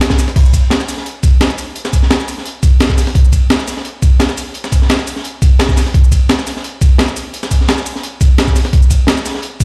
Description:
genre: drum and bass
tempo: 172 BPM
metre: 4/4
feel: straight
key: none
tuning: none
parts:
  - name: breakbeat sampler-style drum kit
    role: drums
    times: 0.0-9.6 s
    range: crash cymbal, hi-hat, ride cymbal, shaker, snare drum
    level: -21 LUFS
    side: equal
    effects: none
  - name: crunchy breakbeat drum kit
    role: drums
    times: 0.0-9.6 s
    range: hi-hat, snare drum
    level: -23 LUFS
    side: equal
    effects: high-pass filter on hats, high-pass filter on snare, high-pass filter on room
  - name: electronic kick drum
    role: drums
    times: 0.1-9.6 s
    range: none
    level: -12 LUFS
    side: equal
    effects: none
room: small room ambience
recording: played on a big sound system in a bare room, stone room reverb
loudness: -13 LUFS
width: mono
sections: 0.0-9.6 A section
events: none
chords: none

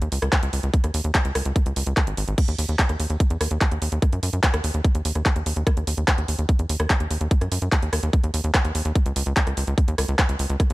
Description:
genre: psychedelic trance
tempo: 146 BPM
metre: 4/4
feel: straight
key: unclear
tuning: A4 = 442 Hz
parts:
  - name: tight sequencer bass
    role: bass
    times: 0.0-10.7 s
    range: Ab1 to Gb2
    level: -24 LUFS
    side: equal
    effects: none
  - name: drum and bass drum kit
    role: drums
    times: 0.0-10.7 s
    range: crash cymbal, handclaps, hi-hat, rim click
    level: -26 LUFS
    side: equal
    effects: overdrive
  - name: electronic kick drum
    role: drums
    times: 0.3-10.7 s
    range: none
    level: -19 LUFS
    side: equal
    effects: overdrive
room: digital ambience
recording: none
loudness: -20 LUFS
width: side -20 dB against mid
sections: 0.0-10.7 A section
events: none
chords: none

